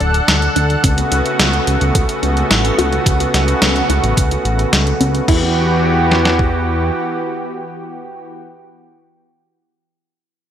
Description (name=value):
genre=synthwave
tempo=108 BPM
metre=4/4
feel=straight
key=E dorian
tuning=A4 = 440 Hz
part: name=lush unison pad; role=sustained chords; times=0.0-8.3 s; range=C#3 to F#5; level=-17 LUFS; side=right 1 dB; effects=chorus, sidechain pumping
part: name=wide unison pluck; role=arpeggios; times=0.0-5.5 s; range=C#4 to D5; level=-24 LUFS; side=equal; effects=digital delay
part: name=fat analog bass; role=bass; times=0.0-6.9 s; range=D1 to E2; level=-17 LUFS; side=equal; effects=none
part: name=detuned 8-bit digital drum machine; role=drums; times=0.0-5.4 s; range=crash cymbal, hi-hat, snare drum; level=-18 LUFS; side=equal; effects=studio reverb
part: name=detuned 8-bit digital drum machine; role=drums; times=0.8-6.5 s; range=kick drum, snare drum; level=-16 LUFS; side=equal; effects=studio reverb
room=moderate plate reverb, RT60 1.8 s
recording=bright 1980s-style digital production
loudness=-13 LUFS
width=side -9 dB against mid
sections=0.0-5.3 A section; 5.3-7.5 B section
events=none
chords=0.0 D; 0.8 A6; 5.3 Emadd9